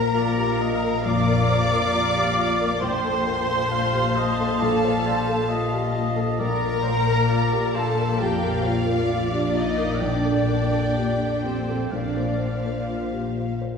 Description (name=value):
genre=cinematic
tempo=62-68 BPM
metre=4/4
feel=rubato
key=Bb major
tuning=A4 = 439 Hz
part: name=rich studio violin section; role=melody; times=0.0-12.9 s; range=C5 to D6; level=-32 LUFS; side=left 1 dB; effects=none
part: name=mellow flute section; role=second line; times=0.0-12.9 s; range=C5 to D6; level=-29 LUFS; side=equal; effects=none
part: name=warm studio violin section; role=second line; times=0.0-13.6 s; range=C5 to Bb5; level=-32 LUFS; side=equal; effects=none
part: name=rich studio viola section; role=accompaniment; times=0.0-12.9 s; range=C4 to D5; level=-26 LUFS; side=right 2 dB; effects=none
part: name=warm baby grand piano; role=accompaniment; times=0.0-13.8 s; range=Bb1 to D5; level=-28 LUFS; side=left 1 dB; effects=none
part: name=rich studio cello section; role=bass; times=0.0-13.6 s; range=Bb2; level=-28 LUFS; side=left 3 dB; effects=none
part: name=rich studio double bass section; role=bass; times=0.0-13.6 s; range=Bb1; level=-27 LUFS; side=left 3 dB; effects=none
part: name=warm oboe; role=second line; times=0.2-13.4 s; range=Bb4 to G5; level=-33 LUFS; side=equal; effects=none
room=wet scoring stage reverb, RT60 1.9 s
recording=heard from further back in the room, studio ambience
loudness=-20 LUFS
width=side -6 dB against mid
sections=0.0-13.8 A section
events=none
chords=0.0 Bb; 2.8 F/Bb; 6.4 Bb; 10.0 Gmadd9/Bb; 11.9 Bbadd9